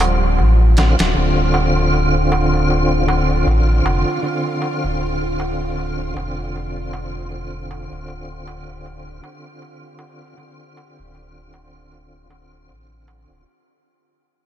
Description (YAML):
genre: trip hop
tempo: 78 BPM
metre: 4/4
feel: swing 57% on 16ths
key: D minor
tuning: A4 = 442 Hz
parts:
  - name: round analog bass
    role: bass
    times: 0.0-13.4 s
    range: D1 to A1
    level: -19 LUFS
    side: equal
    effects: none
  - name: dusty soul sampler-style drum kit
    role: drums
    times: 0.0-1.2 s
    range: hi-hat, snare drum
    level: -25 LUFS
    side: equal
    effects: none
  - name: darbuka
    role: percussion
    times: 0.0-13.4 s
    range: none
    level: -27 LUFS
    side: right 1 dB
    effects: none
  - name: bowed-like drone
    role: texture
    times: 0.0-13.5 s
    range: F3 to G4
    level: -28 LUFS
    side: right 4 dB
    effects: built-in reverb
  - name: tonewheel organ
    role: accompaniment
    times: 0.8-13.4 s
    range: D3 to F4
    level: -22 LUFS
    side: equal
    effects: overdrive, chorus vibrato, slow rotary speaker, tremolo, tape echo
room: moderate huge ambient reverb, RT60 4.9 s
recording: dreamy mix soaked in reverb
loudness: -16 LUFS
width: side -11 dB against mid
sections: 0.0-13.5 A section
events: fade-out 0.0-13.5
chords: 0.0 Dm7